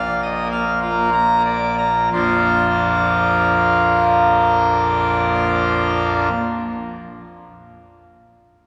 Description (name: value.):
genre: classical, organ toccata.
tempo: 58 BPM.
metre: 3/4.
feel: straight.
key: Bb major.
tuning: A4 = 439 Hz.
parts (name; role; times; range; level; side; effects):
pipe organ, full organ; solo; 0.0-6.3 s; Bb1 to Bb5; -18 LUFS; equal; none.
room: wet church reverb, RT60 3.1 s.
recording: none.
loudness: -17 LUFS.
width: mono.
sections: 0.0-2.1 A section; 2.1-8.4 B section.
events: slowing down 0.0-2.1.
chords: 0.0 Bb.